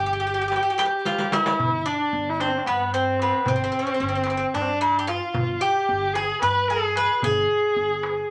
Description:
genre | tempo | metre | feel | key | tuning
Turkish makam ensemble | 224 BPM (eighths) | 7/8 | straight | G makam hicaz | A4 = 440 Hz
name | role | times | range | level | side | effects
Greek bouzouki | melody | 0.0-8.3 s | B3 to B4 | -26 LUFS | equal | none
rich kamancheh | second line | 0.0-8.3 s | B3 to B4 | -28 LUFS | equal | none
upright bass | bass | 0.0-8.2 s | G1 to G2 | -35 LUFS | equal | none
darbuka | percussion | 0.5-8.2 s | none | -34 LUFS | equal | none
riq | percussion | 0.5-1.6 s | none | -31 LUFS | equal | none
room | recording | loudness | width
wet studio ambience, RT60 0.5 s | none | -23 LUFS | mono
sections
0.0-1.6 A section; 1.6-8.3 B section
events
drum fill 1.1-1.6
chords
none

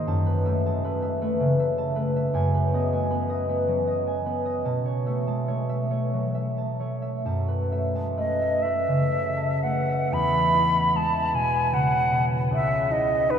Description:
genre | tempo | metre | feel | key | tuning
classical, impressionist duo for flute and harp | 38-54 BPM (dotted quarters) | 6/8 | rubato | E major | A4 = 442 Hz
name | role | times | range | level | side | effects
concert harp | accompaniment | 0.0-13.4 s | C#2 to A5 | -24 LUFS | equal | none
silver concert flute | melody | 8.2-13.4 s | B4 to B5 | -22 LUFS | equal | none
room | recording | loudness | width
wet huge ambient reverb, RT60 7.1 s | in a vast, echoing space, nothing above 11.0 kHz | -22 LUFS | side -8 dB against mid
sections
0.0-10.1 A section; 10.1-13.4 B section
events
none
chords
0.1 F#m11; 2.3 G#m7/F#; 4.6 B9sus4; 7.3 F#m11; 10.1 E69; 12.5 C#madd9

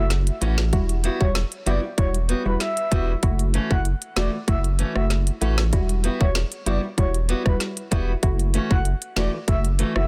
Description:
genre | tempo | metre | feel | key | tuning
dancehall | 96 BPM | 4/4 | straight | E dorian | A4 = 441 Hz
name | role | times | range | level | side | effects
breathy flute-like synth lead | melody | 0.0-10.1 s | B4 to F#5 | -33 LUFS | equal | chorus, delay
wavetable chord stab | accompaniment | 0.0-10.1 s | G3 to F#4 | -32 LUFS | equal | none
saturated sub bass | bass | 0.0-10.1 s | E1 to A1 | -25 LUFS | equal | none
island pop drum kit | drums | 0.1-10.1 s | hi-hat, kick drum, rim click, snare drum | -26 LUFS | equal | soft clipping on snare
fingerpicked steel-string acoustic guitar | arpeggios | 0.4-10.0 s | E3 to F#4 | -31 LUFS | equal | none
room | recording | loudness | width
little or no reverb | dense, heavily limited modern master | -22 LUFS | mono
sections
0.0-10.1 A section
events
none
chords
0.0 F#m7; 0.7 Emadd9; 3.2 F#m7; 5.7 Emadd9; 8.2 F#m7

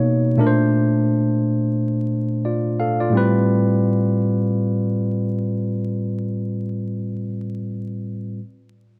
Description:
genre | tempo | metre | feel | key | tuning
R&B | 87 BPM | 4/4 | swing 63% on 16ths | unclear | A4 = 442 Hz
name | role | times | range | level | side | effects
barky tine electric piano | accompaniment | 0.0-8.4 s | A2 to F5 | -21 LUFS | equal | overdrive
room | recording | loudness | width
moderate echo chamber reverb, RT60 2.4 s | dark, warm production, vinyl crackle | -21 LUFS | mono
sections
0.0-3.1 A section; 3.1-5.9 B section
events
none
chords
0.4 Bbmaj9; 3.1 Am9

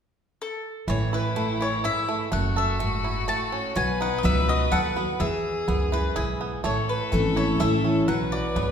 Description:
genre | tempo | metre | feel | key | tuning
bluegrass | 125 BPM | 3/4 | straight | A major | A4 = 440 Hz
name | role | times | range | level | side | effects
mandolin | melody | 0.4-8.7 s | G#4 to A5 | -29 LUFS | left 3 dB | none
bluegrass banjo | melody | 0.9-8.7 s | E3 to A4 | -31 LUFS | right 5 dB | none
rich fiddle | second line | 0.9-8.7 s | E4 to B4 | -30 LUFS | left 3 dB | none
picked steel-string acoustic guitar | accompaniment | 0.9-8.7 s | E2 to F#4 | -28 LUFS | left 1 dB | none
upright bass | bass | 0.9-8.7 s | F#1 to E2 | -28 LUFS | right 1 dB | none
room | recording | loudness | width
wet recital hall reverb, RT60 1.4 s | recorded in a church or concert hall | -22 LUFS | side -8 dB against mid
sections
0.9-8.7 A section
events
none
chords
0.0 N.C.; 0.9 A5; 2.3 F#m7; 3.8 B; 5.2 E; 6.6 A; 8.1 Bm

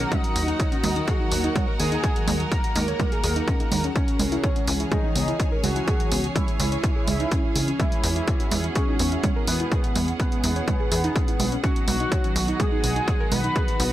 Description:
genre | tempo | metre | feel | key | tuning
melodic techno | 125 BPM | 4/4 | straight | C# dorian | A4 = 443 Hz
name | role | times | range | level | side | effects
fat analog lead | melody | 0.0-13.9 s | B3 to B4 | -29 LUFS | equal | lush chorus, cassette tape, sidechain pumping, digital delay
dark analog pad | sustained chords | 0.0-13.9 s | D#3 to C#5 | -34 LUFS | equal | chorus, sidechain pumping
soft round pluck | arpeggios | 0.0-13.9 s | G#3 to C#5 | -31 LUFS | equal | chorus, sidechain pumping, digital delay
plucky analog bass | bass | 0.0-13.9 s | B1 to E2 | -26 LUFS | equal | sidechain pumping
electronic hi-hat and congas | drums | 0.0-13.9 s | none | -28 LUFS | right 4 dB | none
warm studio string section | texture | 0.0-13.9 s | B3 to G#5 | -33 LUFS | right 2 dB | sidechain pumping
electronic kick drum | drums | 0.1-13.7 s | none | -24 LUFS | equal | none
room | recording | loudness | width
light reverb, digital ambience | none | -21 LUFS | side -13 dB against mid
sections
0.0-13.9 A section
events
none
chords
0.1 D#m; 4.0 C#m; 7.8 Eadd9; 11.6 B

